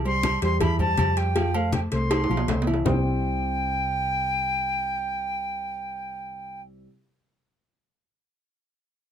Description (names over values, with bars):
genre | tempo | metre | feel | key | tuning
latin, salsa | 160 BPM | 4/4 | straight | C major | A4 = 442 Hz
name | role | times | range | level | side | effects
hollow-body short-scale fingered electric bass | bass | 0.0-6.9 s | B1 to F2 | -28 LUFS | equal | none
silver concert flute | melody | 0.1-6.6 s | F5 to C6 | -27 LUFS | equal | none
dark concert grand piano | accompaniment | 0.1-6.9 s | C3 to F5 | -30 LUFS | left 1 dB | none
agogo bells and timbales | percussion | 0.1-2.9 s | none | -31 LUFS | right 5 dB | none
congas | percussion | 0.1-2.9 s | none | -29 LUFS | left 1 dB | none
cowbell and bongos | percussion | 0.2-2.9 s | none | -31 LUFS | left 4 dB | none
room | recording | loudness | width
little or no reverb | close, detailed microphones | -22 LUFS | side -9 dB against mid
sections
0.0-2.9 A section; 2.9-5.8 B section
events
drum fill 2.1-2.9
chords
0.0 C; 1.4 F; 2.9 C